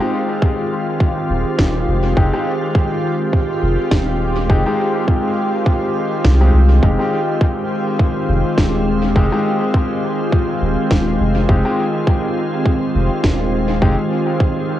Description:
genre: ambient dub.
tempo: 103 BPM.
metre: 4/4.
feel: swing 56% on 16ths.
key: F minor.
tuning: A4 = 440 Hz.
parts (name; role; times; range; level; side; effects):
soft additive organ-like pad; sustained chords; 0.0-14.8 s; Eb3 to G4; -18 LUFS; equal; ensemble chorus, built-in reverb, cassette tape.
bright upright piano; stabs; 0.0-13.9 s; Ab3 to G4; -25 LUFS; left 2 dB; vintage 12-bit sampler grit, cassette tape, dub echo.
electronic kick drum; drums; 0.4-14.5 s; none; -17 LUFS; equal; overdrive, cassette tape.
soft dub sub bass; bass; 1.3-14.0 s; Eb1 to C2; -16 LUFS; equal; none.
electronic snare drum; drums; 1.6-13.4 s; none; -26 LUFS; equal; overdrive, cassette tape, dub echo.
room: moderate studio reverb, RT60 0.6 s.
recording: home recording on cassette.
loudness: -14 LUFS.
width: side -12 dB against mid.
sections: 0.0-14.8 A section.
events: none.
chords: 0.0 Fm9.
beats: 0.42 1.00 1.59 | 2.17 2.75 3.33 3.92 | 4.50 5.08 5.67 6.25 | 6.83 7.41 8.00 8.58 | 9.16 9.74 10.33 10.91 | 11.49 12.07 12.66 13.24 | 13.82 14.40.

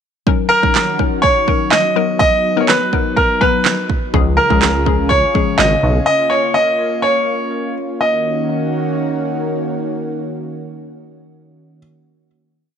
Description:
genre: dance-pop.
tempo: 124 BPM.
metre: 4/4.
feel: straight.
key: Eb minor.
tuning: A4 = 441 Hz.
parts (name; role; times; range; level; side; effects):
hollow square pluck; accompaniment; 0.3-5.8 s; F3 to A#5; -20 LUFS; left 15 dB; chorus, sidechain pumping.
lush unison pad; sustained chords; 0.3-11.8 s; Db3 to Ab4; -22 LUFS; equal; chorus, sidechain pumping.
pop drum kit; drums; 0.3-5.7 s; handclaps, kick drum, snare drum; -17 LUFS; right 3 dB; none.
clear grand piano; melody; 0.5-11.8 s; Bb4 to Eb5; -15 LUFS; equal; none.
chorused synth bass; bass; 4.1-6.0 s; Ab1 to Db2; -17 LUFS; equal; sidechain pumping.
room: light reverb.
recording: 1960s-style stereo.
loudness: -13 LUFS.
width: side -8 dB against mid.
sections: 0.3-8.0 verse; 8.0-11.9 final chord.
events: none.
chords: 0.3 Ebm7; 2.0 Bmaj7; 4.1 Db; 6.1 Bbm; 8.0 Ebm7.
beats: | 0.27 0.75 1.24 1.72 | 2.20 2.69 3.17 3.66 | 4.14 4.62 5.11 5.59 | 6.08 6.56 7.04 7.53 | 8.01 8.49 8.98 9.46 | 9.95 10.43 10.91 11.40.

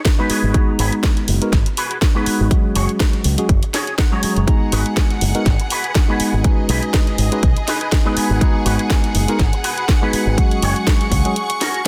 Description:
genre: nu-disco, nu disco.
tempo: 122 BPM.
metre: 4/4.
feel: swing 55% on 16ths.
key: unclear.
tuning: A4 = 441 Hz.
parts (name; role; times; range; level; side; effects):
electronic kick drum; drums; 0.1-11.2 s; none; -18 LUFS; equal; none.
house drum kit; drums; 0.1-11.9 s; hi-hat, snare drum; -26 LUFS; equal; none.
tine electric piano; accompaniment; 0.2-11.9 s; F#3 to A#5; -24 LUFS; equal; subtle chorus, sidechain pumping, dub echo.
electric guitar with an envelope filter; riff; 0.2-11.8 s; D#4 to G#5; -28 LUFS; equal; ensemble chorus, low-pass filter, dub echo.
fingered electric bass with an envelope filter; bass; 0.3-11.2 s; F#1 to C#2; -21 LUFS; equal; none.
rich studio string section; sustained chords; 4.5-11.9 s; G#4 to C#6; -28 LUFS; equal; sidechain pumping.
room: light reverb.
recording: dense, heavily limited modern master.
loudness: -17 LUFS.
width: mono.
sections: 0.0-11.9 A section.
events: clean electric guitar fill 3.5-4.5; kick drops out 11.4-11.9.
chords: 0.3 F#sus2; 4.5 G#m7; 6.4 B6; 8.2 G#m7; 10.4 F#sus2.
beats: 0.05 | 0.55 1.04 1.53 2.02 | 2.51 3.00 3.50 3.99 | 4.48 4.97 5.46 5.96 | 6.45 6.94 7.43 7.92 | 8.41 8.90 9.40 9.89 | 10.38 10.87 11.36 11.86.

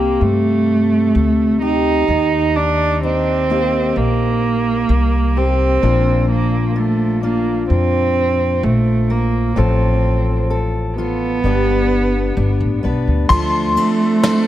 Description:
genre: acoustic folk duo or small band.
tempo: 64 BPM.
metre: 4/4.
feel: straight.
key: unclear.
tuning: A4 = 440 Hz.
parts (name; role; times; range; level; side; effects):
dark cello; second line; 0.0-14.5 s; A3 to Eb4; -17 LUFS; right 3 dB; tape echo.
fingerpicked steel-string acoustic guitar; accompaniment; 0.0-14.5 s; G2 to B4; -21 LUFS; left 4 dB; none.
upright bass; bass; 0.0-13.7 s; G1 to G2; -19 LUFS; equal; none.
clear upright piano; melody; 13.3-14.5 s; C6; -18 LUFS; left 3 dB; none.
picked steel-string acoustic guitar; arpeggios; 13.3-14.5 s; F3 to A4; -24 LUFS; right 4 dB; none.
soft brush drum kit; drums; 13.3-14.5 s; kick drum, ride cymbal, snare drum; -22 LUFS; equal; none.
room: little or no reverb.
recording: none.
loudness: -14 LUFS.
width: side -12 dB against mid.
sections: 0.0-13.3 A section; 13.3-14.5 B section.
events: cello solo 0.0-13.3.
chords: 0.0 C5; 2.1 Eb; 5.8 Bbadd9; 9.6 F/A; 11.4 G; 13.3 Dm7.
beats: 0.21 1.14 | 2.08 3.02 3.95 4.89 | 5.82 6.76 7.70 8.63 | 9.57 10.50 11.44 12.37 | 13.30 14.23.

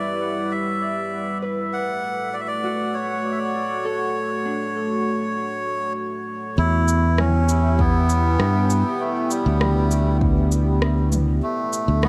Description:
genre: ambient dub.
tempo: 99 BPM.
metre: 4/4.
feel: straight.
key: E dorian.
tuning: A4 = 440 Hz.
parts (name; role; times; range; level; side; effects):
melodica; melody; 0.0-12.1 s; G3 to F#5; -27 LUFS; equal; tape echo.
warm analog pad; sustained chords; 0.0-12.1 s; G3 to C#6; -29 LUFS; equal; chorus.
Celtic harp; arpeggios; 1.4-7.3 s; D4 to B4; -34 LUFS; equal; tape echo.
fingered electric bass; bass; 6.6-12.1 s; D2 to G2; -21 LUFS; equal; none.
organic electronic drum kit; drums; 6.9-12.1 s; cabasa, rim click, toms; -29 LUFS; equal; studio ambience.
electronic kick drum; drums; 7.8-10.3 s; none; -24 LUFS; equal; studio ambience.
room: light reverb.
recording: none.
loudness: -22 LUFS.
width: mono.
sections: 0.0-6.6 A section; 6.6-12.1 B section.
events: none.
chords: 0.0 Em7; 1.7 Dmaj7; 6.6 Em7; 11.4 D.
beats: 0.52 1.12 | 1.73 2.33 2.94 3.55 | 4.15 4.76 5.36 5.97 | 6.58 7.18 7.79 8.39 | 9.00 9.61 10.21 10.82 | 11.43 12.03.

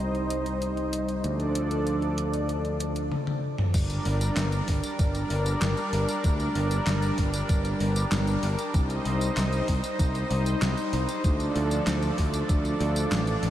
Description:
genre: synthwave.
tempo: 96 BPM.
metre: 4/4.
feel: straight.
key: G minor.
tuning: A4 = 440 Hz.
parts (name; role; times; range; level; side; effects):
warm analog pad; sustained chords; 0.0-13.5 s; F3 to Eb5; -28 LUFS; equal; lush chorus, sidechain pumping, shimmer reverb.
overdriven picked electric bass; bass; 0.0-13.5 s; G1 to D2; -28 LUFS; equal; sidechain pumping, low-pass filter.
gated 80s digital drum machine; drums; 0.1-13.5 s; crash cymbal, handclaps, hi-hat, snare drum, tambourine, toms; -32 LUFS; left 1 dB; gated reverb, gated reverb snare, overdrive.
electronic kick drum; drums; 3.7-12.6 s; none; -26 LUFS; equal; overdrive.
room: moderate huge ambient reverb, RT60 7.2 s.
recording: dreamy mix soaked in reverb, lossy compression artefacts.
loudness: -24 LUFS.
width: side -12 dB against mid.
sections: 0.0-3.7 A section; 3.7-13.5 B section.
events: filter sweep on drum 0.0-3.7; drum fill 3.1-3.7.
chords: 0.0 Cm; 1.2 Dm; 3.7 Gm; 8.7 Cm; 11.2 Dm.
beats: 0.62 | 1.24 1.87 2.49 3.12 | 3.74 4.37 4.99 5.62 | 6.24 6.87 7.49 8.12 | 8.74 9.37 9.99 10.62 | 11.24 11.87 12.49 13.12.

